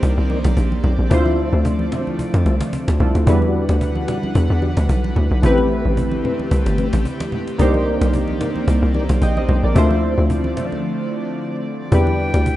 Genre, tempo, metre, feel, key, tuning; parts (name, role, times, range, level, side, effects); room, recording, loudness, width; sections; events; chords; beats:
amapiano; 111 BPM; 4/4; swing 55% on 16ths; A4 = 439 Hz
warm analog keys; accompaniment; 0.0-12.6 s; F#3 to G5; -23 LUFS; equal; chorus
airy breathy pad; sustained chords; 0.0-12.6 s; D3 to F#5; -25 LUFS; equal; chorus
hollow log drum bass; bass; 0.0-12.6 s; G1 to F2; -17 LUFS; equal
cajon; drums; 0.0-12.6 s; -27 LUFS; equal
mellow tonewheel organ; stabs; 0.3-12.4 s; C4 to E5; -27 LUFS; left 3 dB; fast rotary speaker, digital delay
congas; percussion; 0.3-12.6 s; -28 LUFS; right 1 dB
reedy silver concert flute; melody; 11.9-12.6 s; G5; -24 LUFS; left 1 dB
light reverb, small room ambience; rough home demo mix, nothing above 11.0 kHz; -16 LUFS; side -14 dB against mid
0.0-12.6 A section
break 10.8-11.9
0.0 Cm9; 1.1 Dm9; 3.3 Em9; 5.4 Am9; 7.6 Cm9; 9.8 Dm9; 11.9 Em9
0.03 0.57 | 1.11 1.65 2.19 2.73 | 3.27 3.81 4.35 4.89 | 5.43 5.97 6.51 7.05 | 7.59 8.13 8.68 9.22 | 9.76 10.30 10.84 11.38 | 11.92 12.46